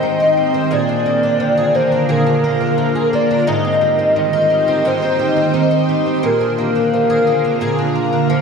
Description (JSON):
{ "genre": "dream pop", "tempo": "87 BPM", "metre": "4/4", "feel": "straight", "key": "unclear", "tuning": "A4 = 440 Hz", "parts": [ { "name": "warbly nostalgic lead", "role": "melody", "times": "0.0-7.6 s", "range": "Bb4 to Eb5", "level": "-18 LUFS", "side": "equal", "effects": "chorus, shimmer reverb, tape echo" }, { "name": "ethereal airy pad", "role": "sustained chords", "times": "0.0-8.4 s", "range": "D3 to G5", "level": "-19 LUFS", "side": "right 3 dB", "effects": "ensemble chorus, built-in reverb, phaser, shimmer reverb" }, { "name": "fingerpicked twelve-string acoustic guitar", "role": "arpeggios", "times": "0.0-8.4 s", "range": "Ab2 to Ab4", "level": "-18 LUFS", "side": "left 3 dB", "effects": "analog chorus, shimmer reverb, tape echo" } ], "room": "wet lush hall reverb, RT60 2.1 s", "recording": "dark, warm production", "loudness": "-13 LUFS", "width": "side -5 dB against mid", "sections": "0.0-8.4 A section", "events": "none", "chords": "0.0 Abmaj7; 0.7 Bb7; 3.5 Abmaj7; 6.2 Bb7" }